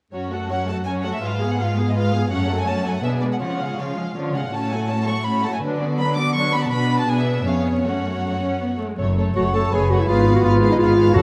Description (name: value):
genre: quick classical-period movement for symphony orchestra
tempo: 164 BPM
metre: 3/4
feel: rubato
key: F# minor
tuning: A4 = 440 Hz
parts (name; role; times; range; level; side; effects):
- warm symphonic violin section; second line; 0.1-11.2 s; D4 to A5; -31 LUFS; equal; none
- rich chamber viola section; accompaniment; 0.1-11.2 s; E#3 to A4; -27 LUFS; equal; none
- rich chamber cello section; bass; 0.1-11.2 s; E#2 to E#3; -26 LUFS; equal; none
- warm chamber violin section; melody; 0.5-11.2 s; C#5 to D6; -30 LUFS; equal; none
- rich studio double bass section; bass; 9.0-11.2 s; F#1 to Ab1; -24 LUFS; equal; none
- mellow cor anglais; second line; 9.3-11.2 s; A4 to C#5; -27 LUFS; equal; none
- mellow clarinet; second line; 9.4-11.2 s; D#4 to A4; -20 LUFS; equal; none
- timpani; percussion; 11.2 s; F#2; -19 LUFS; equal; none
room: wet recital hall reverb, RT60 1.3 s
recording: vinyl crackle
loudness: -21 LUFS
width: mono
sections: 0.1-9.0 A section; 9.0-11.2 A section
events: none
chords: 0.1 F#m; 1.2 Fdim/Ab; 2.3 F#m; 3.0 G#dim/B; 3.4 C#; 4.5 F#m/A; 5.6 Bm/D; 6.7 Bm; 7.4 C#7/E#; 7.8 F#m; 10.1 Fdim/Ab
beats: | 0.12 0.49 0.86 | 1.23 1.59 1.96 | 2.32 2.68 3.04 | 3.41 3.78 4.15 | 4.53 4.90 5.26 | 5.63 5.99 6.36 | 6.72 7.08 7.45 | 7.84 8.23 8.61 | 8.98 9.36 9.72 | 10.08 10.44 10.80 | 11.16